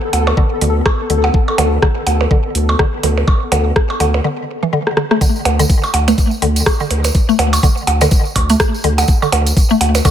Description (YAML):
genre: minimal techno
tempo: 124 BPM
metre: 4/4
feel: swing 58% on 16ths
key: unclear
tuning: A4 = 440 Hz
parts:
  - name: pulsing gated texture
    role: texture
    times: 0.0-4.3 s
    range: B3 to A4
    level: -22 LUFS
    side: left 3 dB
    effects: chorus, built-in reverb, sidechain pumping
  - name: saturated sub bass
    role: bass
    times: 0.1-10.0 s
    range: D2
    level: -15 LUFS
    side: equal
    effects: tube saturation, sidechain pumping
  - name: booming analog drum machine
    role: drums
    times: 0.1-10.1 s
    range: hi-hat, rim click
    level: -20 LUFS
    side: equal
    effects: none
  - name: percussion blips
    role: percussion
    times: 0.1-10.1 s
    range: none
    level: -20 LUFS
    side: right 4 dB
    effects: digital delay
  - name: mallet-like synth pluck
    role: riff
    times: 0.4-10.1 s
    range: D3 to A3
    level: -18 LUFS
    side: left 1 dB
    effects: analog chorus, sidechain pumping, digital delay
  - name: electronic kick drum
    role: drums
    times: 0.4-10.1 s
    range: none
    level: -14 LUFS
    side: equal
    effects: none
  - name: tambourine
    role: percussion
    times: 5.2-10.1 s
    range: none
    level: -24 LUFS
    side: right 2 dB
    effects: none
room: light reverb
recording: none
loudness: -12 LUFS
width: side -10 dB against mid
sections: 0.0-5.2 A section; 5.2-10.1 B section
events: break 4.2-5.2; drum fill 4.8-5.2; drop 5.2-10.1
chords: 0.0 D5; 5.2 N.C.